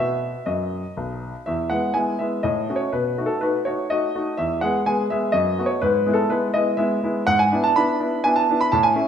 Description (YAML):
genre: classical-period piano sonatina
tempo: 124 BPM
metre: 3/4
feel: straight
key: E major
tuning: A4 = 440 Hz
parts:
  - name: clear grand piano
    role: solo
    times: 0.0-9.1 s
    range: B1 to B5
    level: -19 LUFS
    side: equal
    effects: none
room: wet recital hall reverb, RT60 1.4 s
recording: minimal, uncompressed stereo recording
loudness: -19 LUFS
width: side -8 dB against mid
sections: 0.0-1.5 A section; 1.5-9.1 B section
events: none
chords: 0.0 B; 1.5 E; 2.4 F#m/A; 2.9 B7; 4.4 E; 5.4 B7/F#; 5.8 E/G#; 7.3 E7/G#